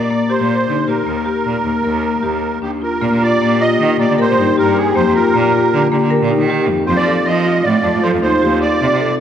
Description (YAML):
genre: contemporary instrumental, chamber music in an uneven meter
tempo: 155 BPM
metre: 5/4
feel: straight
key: unclear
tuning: A4 = 440 Hz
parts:
  - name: musette accordion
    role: melody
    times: 0.0-9.2 s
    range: G4 to Eb5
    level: -18 LUFS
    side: right 3 dB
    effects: none
  - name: marimba with medium hard mallets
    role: arpeggios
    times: 0.0-9.2 s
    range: A3 to Bb4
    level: -17 LUFS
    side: left 3 dB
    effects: none
  - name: bright cello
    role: bass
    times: 0.0-9.1 s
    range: Eb2 to F3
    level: -20 LUFS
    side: right 3 dB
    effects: none
  - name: mellow French horn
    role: second line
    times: 3.0-9.2 s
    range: F4 to G4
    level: -20 LUFS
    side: left 3 dB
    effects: none
room: wet concert hall reverb, RT60 2.2 s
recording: none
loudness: -13 LUFS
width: side -9 dB against mid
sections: 0.0-3.0 A section; 3.0-9.2 B section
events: none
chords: 0.0 Ebmaj7/Bb; 1.1 Eb; 3.0 Bbsus4; 6.9 F7